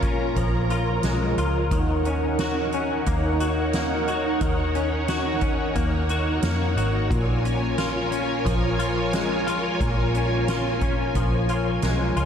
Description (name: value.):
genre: dream pop.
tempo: 89 BPM.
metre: 4/4.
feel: straight.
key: Eb minor.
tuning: A4 = 440 Hz.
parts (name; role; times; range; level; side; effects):
string machine, violas; sustained chords; 0.0-12.3 s; Eb4 to Bb5; -26 LUFS; right 1 dB; ensemble chorus.
semi-hollow electric guitar; arpeggios; 0.0-12.3 s; Bb2 to Gb4; -27 LUFS; left 3 dB; ensemble chorus, ping-pong delay.
vintage muted fingered electric bass; bass; 0.0-12.3 s; Ab1 to F2; -27 LUFS; equal; none.
soft-mallet drum kit; drums; 0.0-12.3 s; hi-hat, kick drum, snare drum; -29 LUFS; equal; none.
room: moderate lush hall reverb, RT60 2.0 s.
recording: dark, warm production.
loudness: -21 LUFS.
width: side -8 dB against mid.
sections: 0.0-12.3 A section.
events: none.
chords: 0.0 Bbm7; 1.7 Ebm7; 7.1 Bbm7.